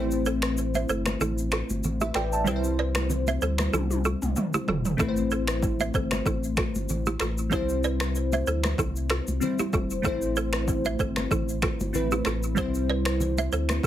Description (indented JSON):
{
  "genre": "afrobeats",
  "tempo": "95 BPM",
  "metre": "4/4",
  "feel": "swing 55% on 16ths",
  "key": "A minor",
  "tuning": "A4 = 440 Hz",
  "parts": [
    { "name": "glassy digital keys", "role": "accompaniment", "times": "0.0-13.9 s", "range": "G3 to A5", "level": "-29 LUFS", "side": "left 1 dB", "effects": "chorus" },
    { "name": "balafon", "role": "riff", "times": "0.0-13.9 s", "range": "E4 to E5", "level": "-30 LUFS", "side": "right 4 dB", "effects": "digital delay" },
    { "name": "warm sub bass", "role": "bass", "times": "0.0-13.9 s", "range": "E1 to D2", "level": "-29 LUFS", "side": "equal", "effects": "none" },
    { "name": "deep house drum kit", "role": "drums", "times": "0.1-13.9 s", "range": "finger snaps, kick drum, rim click, shaker, toms", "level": "-29 LUFS", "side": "equal", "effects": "none" },
    { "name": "congas", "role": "percussion", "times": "0.7-13.9 s", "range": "none", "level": "-35 LUFS", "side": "right 1 dB", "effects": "none" }
  ],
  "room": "light reverb",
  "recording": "heavily compressed radio sound",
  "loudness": "-24 LUFS",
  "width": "side -11 dB against mid",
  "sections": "0.0-13.9 A section",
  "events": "break 0.0-5.0; drum fill 3.7-5.0",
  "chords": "0.0 Am; 2.5 C; 5.0 Am; 7.5 C; 10.0 Am; 12.6 C"
}